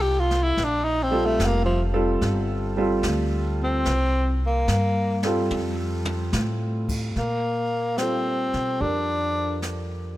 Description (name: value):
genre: jazz ballad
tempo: 73 BPM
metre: 4/4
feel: swing 67% on 8ths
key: Bb major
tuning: A4 = 440 Hz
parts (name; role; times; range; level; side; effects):
- breathy tenor saxophone; melody; 0.0-9.6 s; F3 to G4; -24 LUFS; left 1 dB; none
- warm concert grand piano; accompaniment; 0.0-10.2 s; G3 to D5; -27 LUFS; right 2 dB; none
- upright bass; bass; 0.0-10.2 s; F1 to Cb3; -26 LUFS; equal; none
- jazz brush drum kit; drums; 0.3-10.2 s; brushed snare drum, crash cymbal, hi-hat, kick drum, snare drum, toms; -34 LUFS; left 1 dB; none
room: light reverb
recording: none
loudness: -21 LUFS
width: side -15 dB against mid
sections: 0.0-7.2 A section; 7.2-10.2 B section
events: tenor saxophone solo 0.0-7.2; drum fill 4.7-6.3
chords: 0.0 Fadd9; 0.6 Bb69; 3.9 C5; 5.5 Fadd9; 7.2 Bb69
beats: | 0.57 1.39 2.21 3.03 | 3.86 4.68 5.50 6.33 | 7.15 7.97 8.80 9.62